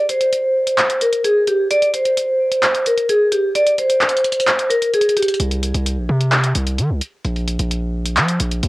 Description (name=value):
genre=hip hop, trap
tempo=130 BPM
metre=4/4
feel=half-time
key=unclear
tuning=A4 = 440 Hz
part: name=vibraphone with medium mallets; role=melody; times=0.0-5.3 s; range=G4 to D5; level=-15 LUFS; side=equal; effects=low-pass filter, cassette tape, tape echo
part: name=trap drum kit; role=drums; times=0.1-8.7 s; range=handclaps, hi-hat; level=-20 LUFS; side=equal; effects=none
part: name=distorted 808-style bass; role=bass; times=5.4-8.7 s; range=Bb1 to F3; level=-18 LUFS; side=equal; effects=distortion
room=light reverb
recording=home recording on cassette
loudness=-15 LUFS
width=side -20 dB against mid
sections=0.0-8.7 A section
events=break 0.0-5.4, 5.4-8.7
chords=0.0 N.C.; 7.2 Bb5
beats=0.32 0.79 1.25 | 1.71 2.17 2.63 3.09 | 3.55 4.02 4.48 4.94 | 5.40 5.86 6.32 6.79 | 7.25 7.71 8.17 8.63